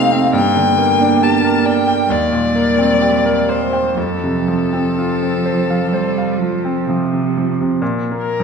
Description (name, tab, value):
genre	classical, slow romantic movement for piano trio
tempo	60-71 BPM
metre	4/4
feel	rubato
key	unclear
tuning	A4 = 443 Hz
part	rich violin	melody	0.0-8.4 s	A4 to A5	-18 LUFS	left 4 dB	none
part	rich cello	second line	0.0-7.8 s	C3 to Bb3	-20 LUFS	right 6 dB	none
part	bright concert grand piano	accompaniment	0.0-8.4 s	Eb2 to A5	-16 LUFS	right 1 dB	none
room	wet recital hall reverb, RT60 1.5 s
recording	dark, warm production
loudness	-13 LUFS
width	side -6 dB against mid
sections	0.0-7.8 A section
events	none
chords	0.3 Gm; 2.1 Eb6; 4.0 F; 7.8 N.C.